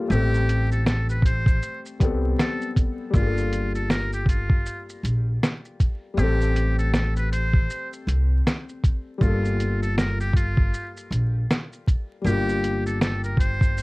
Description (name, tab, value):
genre	lo-fi hip hop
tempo	79 BPM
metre	4/4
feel	swing 59% on 16ths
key	G minor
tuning	A4 = 440 Hz
part	felt-muted upright piano	accompaniment	0.0-13.8 s	G3 to A4	-30 LUFS	left 4 dB	low-pass filter, cassette tape
part	trumpet with metal mute	melody	0.1-13.8 s	F4 to C5	-30 LUFS	equal	low-pass filter, cassette tape
part	upright bass	bass	0.1-13.8 s	G1 to C2	-23 LUFS	equal	none
part	lo-fi sampler-style drum kit	drums	0.1-13.8 s	hi-hat, kick drum, shaker, snare drum	-21 LUFS	equal	none
room	light reverb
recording	home recording on cassette, vinyl crackle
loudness	-21 LUFS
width	side -23 dB against mid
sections	0.0-13.8 A section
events	none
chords	0.1 Am9; 3.1 Gm9; 6.2 Am7; 9.2 Gm9